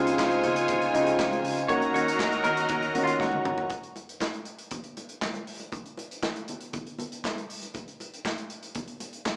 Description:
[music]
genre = disco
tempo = 119 BPM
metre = 4/4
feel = straight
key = unclear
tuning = A4 = 440 Hz
[part]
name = clear studio string section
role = second line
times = 0.0-3.7 s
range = F4 to Bb5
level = -33 LUFS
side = equal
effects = none
[part]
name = clear concert grand piano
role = accompaniment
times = 0.0-3.7 s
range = C3 to Gb4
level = -31 LUFS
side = equal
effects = none
[part]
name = percussive tonewheel organ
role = sustained chords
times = 0.0-3.7 s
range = Eb3 to Gb4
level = -33 LUFS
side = equal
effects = overdrive, stopped rotary speaker
[part]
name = warm horn section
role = stabs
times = 0.0-3.4 s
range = Gb3 to C5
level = -34 LUFS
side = equal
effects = none
[part]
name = hollow-body short-scale fingered electric bass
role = bass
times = 0.0-3.6 s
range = Db2 to Eb3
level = -43 LUFS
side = equal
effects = none
[part]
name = modern studio drum kit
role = drums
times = 0.1-9.4 s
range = handclaps, hi-hat, kick drum, snare drum, toms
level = -37 LUFS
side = equal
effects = none
[part]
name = congas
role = percussion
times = 0.2-9.4 s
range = none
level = -42 LUFS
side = equal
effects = none
[part]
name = semi-hollow electric guitar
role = accompaniment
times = 1.7-3.7 s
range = F4 to Db5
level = -32 LUFS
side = equal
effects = none
[sound]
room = wet large studio reverb, RT60 0.9 s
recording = band playing live in one room, small speaker sound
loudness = -28 LUFS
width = mono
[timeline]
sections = 0.0-3.7 A section; 3.7-9.4 B section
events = clean electric guitar solo 0.0-3.7; drum fill 3.2-3.7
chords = 0.0 Dbmaj7; 1.7 Ebm7; 3.7 N.C.

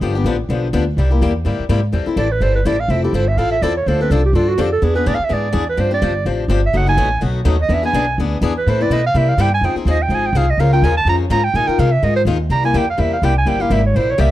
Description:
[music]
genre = acoustic string swing (jazz manouche)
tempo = 250 BPM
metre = 4/4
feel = swing 55% on 8ths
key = A minor, F minor from 9.6 s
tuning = A4 = 439 Hz
[part]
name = picked swing-style acoustic guitar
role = accompaniment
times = 0.0-14.3 s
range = B2 to B4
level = -20 LUFS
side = left 5 dB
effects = none
[part]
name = upright bass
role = bass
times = 0.0-14.3 s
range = F1 to C3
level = -17 LUFS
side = equal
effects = none
[part]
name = breathy clarinet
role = melody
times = 2.2-14.3 s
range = F4 to Bb5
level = -19 LUFS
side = right 4 dB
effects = none
[sound]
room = studio ambience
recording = dry, close 1970s-style studio recording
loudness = -14 LUFS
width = side -14 dB against mid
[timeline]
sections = 0.0-1.9 A section; 1.9-9.6 B section; 9.6-14.3 B section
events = clarinet solo 1.9-14.3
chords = 0.0 G7; 1.0 C7; 1.9 Am7; 2.9 Fmaj7; 3.9 Dm7; 4.8 E7; 5.8 G7sus4; 6.7 B7/F#; 7.7 E7; 8.7 Amadd9; 9.1 C7; 9.6 Fm7; 10.6 Db6; 11.5 Bb9sus4; 12.5 C7

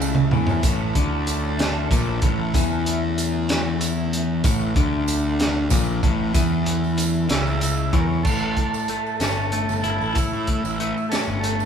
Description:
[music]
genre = psychedelic rock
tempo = 63 BPM (dotted quarters)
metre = 6/8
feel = straight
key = A major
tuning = A4 = 440 Hz
[part]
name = phased string machine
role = sustained chords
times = 0.0-8.2 s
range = A3 to A4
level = -33 LUFS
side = right 2 dB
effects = ensemble chorus, phaser
[part]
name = semi-hollow electric guitar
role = riff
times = 0.0-11.7 s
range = A2 to E4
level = -25 LUFS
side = left 4 dB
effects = none
[part]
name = fuzz picked electric bass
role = bass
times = 0.0-11.7 s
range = G1 to A2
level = -25 LUFS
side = right 2 dB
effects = overdrive
[part]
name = tambourine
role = percussion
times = 0.0-11.7 s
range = none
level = -36 LUFS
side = right 8 dB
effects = none
[part]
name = crunchy breakbeat drum kit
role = drums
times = 0.1-11.6 s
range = crash cymbal, hi-hat, kick drum, snare drum, toms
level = -23 LUFS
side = right 1 dB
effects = none
[part]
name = combo organ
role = melody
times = 7.3-11.7 s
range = E4 to C#5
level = -27 LUFS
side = right 5 dB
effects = none
[sound]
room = moderate large studio reverb, RT60 1.2 s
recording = band playing live in one room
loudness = -19 LUFS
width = side -7 dB against mid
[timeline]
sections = 0.0-8.3 A section; 8.3-11.7 B section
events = drum fill 0.0-0.6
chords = 0.0 A

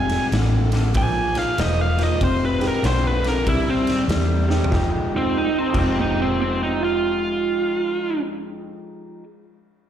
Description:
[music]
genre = electric blues shuffle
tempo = 96 BPM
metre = 4/4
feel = swing 64% on 8ths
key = F minor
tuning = A4 = 440 Hz
[part]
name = biting lead guitar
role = melody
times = 0.0-8.2 s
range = C4 to Ab5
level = -23 LUFS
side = right 2 dB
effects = overdrive, plate reverb, slapback echo
[part]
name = warm upright piano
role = accompaniment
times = 0.0-9.0 s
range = F2 to Bb6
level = -31 LUFS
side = right 7 dB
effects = plate reverb, slapback echo
[part]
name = electric guitar through a small old amp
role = riff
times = 0.0-9.2 s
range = F2 to G4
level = -26 LUFS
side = left 5 dB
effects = slapback echo
[part]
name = vintage muted fingered electric bass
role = bass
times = 0.0-8.7 s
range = E1 to E2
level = -22 LUFS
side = equal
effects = none
[part]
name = raw garage drum kit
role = drums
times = 0.1-5.9 s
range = crash cymbal, kick drum, ride cymbal, snare drum, toms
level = -26 LUFS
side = right 1 dB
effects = none
[part]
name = clean lap steel guitar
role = second line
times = 5.1-8.2 s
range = C4 to F4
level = -27 LUFS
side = right 8 dB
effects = plate reverb
[sound]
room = light reverb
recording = live gig heard through the venue's PA, recital hall reverb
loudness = -18 LUFS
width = side -9 dB against mid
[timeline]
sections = 0.0-4.7 A section; 4.7-7.2 B section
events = drum fill 4.4-4.7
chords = 0.0 Fm9; 1.0 Bb5; 2.2 Fm9; 3.5 C; 4.7 Fm9

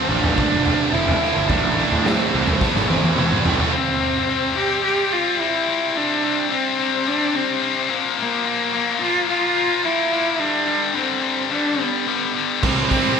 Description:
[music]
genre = quiet-loud alternative rock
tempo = 108 BPM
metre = 4/4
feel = straight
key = C major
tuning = A4 = 445 Hz
[part]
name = rich cello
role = melody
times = 0.0-13.2 s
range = Bb3 to G4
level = -22 LUFS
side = right 2 dB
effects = slapback echo, analog delay
[part]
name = twelve-string electric guitar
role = arpeggios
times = 0.0-3.7 s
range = F2 to F4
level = -28 LUFS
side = right 8 dB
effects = tremolo, slapback echo, analog delay
[part]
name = heavy high-gain guitar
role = riff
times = 0.0-13.2 s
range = F2 to C4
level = -21 LUFS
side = left 8 dB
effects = distortion
[part]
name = tight distorted guitar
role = riff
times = 0.0-3.7, 12.6-13.2 s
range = A2 to G4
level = -24 LUFS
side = right 12 dB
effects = distortion, slapback echo
[part]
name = fuzz picked electric bass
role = bass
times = 0.1-3.6, 12.6-12.8 s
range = F1 to A2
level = -25 LUFS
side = equal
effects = overdrive
[part]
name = raw garage drum kit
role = drums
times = 0.2-3.7, 12.6-13.0 s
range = crash cymbal, hi-hat, kick drum, snare drum, toms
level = -22 LUFS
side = right 1 dB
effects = none
[part]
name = sludgy distorted guitar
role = riff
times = 12.6-13.2 s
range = C3 to C4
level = -26 LUFS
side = right 5 dB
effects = none
[sound]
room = moderate lush hall reverb, RT60 1.8 s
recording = big arena sound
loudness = -17 LUFS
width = side -6 dB against mid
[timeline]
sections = 0.0-3.7 A section; 3.7-13.2 B section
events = drum fill 2.6-3.7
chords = 0.0 F; 1.5 Am; 3.7 C5; 7.9 Bb5; 10.4 G; 12.6 C

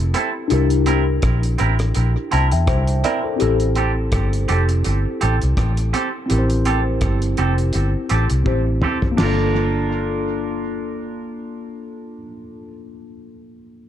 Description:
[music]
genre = lovers rock reggae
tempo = 83 BPM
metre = 4/4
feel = swing 55% on 16ths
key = G dorian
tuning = A4 = 440 Hz
[part]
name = tine electric piano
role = accompaniment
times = 0.0-13.9 s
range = Bb3 to A5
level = -23 LUFS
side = left 3 dB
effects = phaser
[part]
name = vintage muted fingered electric bass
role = bass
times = 0.0-12.2 s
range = F1 to E2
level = -19 LUFS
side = equal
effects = none
[part]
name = twangy electric guitar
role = stabs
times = 0.1-12.7 s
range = C4 to Bb4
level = -25 LUFS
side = right 5 dB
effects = tape echo
[part]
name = cloth-damped thuddy drum kit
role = drums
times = 0.1-9.4 s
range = crash cymbal, hi-hat, kick drum, rim click, snare drum, toms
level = -24 LUFS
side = equal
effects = tape echo
[sound]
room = light reverb, small room ambience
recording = dark, warm production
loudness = -16 LUFS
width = side -10 dB against mid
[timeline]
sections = 0.0-9.2 A section; 9.2-12.1 B section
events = tine electric piano fill 2.0-3.4; drum fill 8.5-9.2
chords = 0.0 Fmaj7; 0.5 C7; 3.4 Am7; 9.2 Gm7

